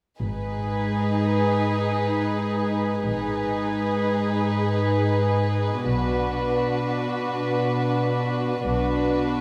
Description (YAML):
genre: cinematic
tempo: free time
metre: none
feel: none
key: G# minor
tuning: A4 = 438 Hz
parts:
  - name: warm studio violin section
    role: melody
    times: 0.2-9.4 s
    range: B4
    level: -30 LUFS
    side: equal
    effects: none
  - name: dark studio violin section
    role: second line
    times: 0.2-9.4 s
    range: F#4 to G#4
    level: -32 LUFS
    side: equal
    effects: none
  - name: warm studio viola section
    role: accompaniment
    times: 0.2-9.4 s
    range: D4 to D#4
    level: -32 LUFS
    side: equal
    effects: none
  - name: dark studio cello section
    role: bass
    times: 0.2-9.4 s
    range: G#2 to B2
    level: -28 LUFS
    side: equal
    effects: none
  - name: warm chamber double bass section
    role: bass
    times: 0.2-9.3 s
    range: G#1 to B1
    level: -32 LUFS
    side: equal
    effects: none
room: wet scoring stage reverb, RT60 1.8 s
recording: none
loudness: -24 LUFS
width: mono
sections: 0.2-9.4 A section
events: none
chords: 0.2 G#m; 5.9 Bm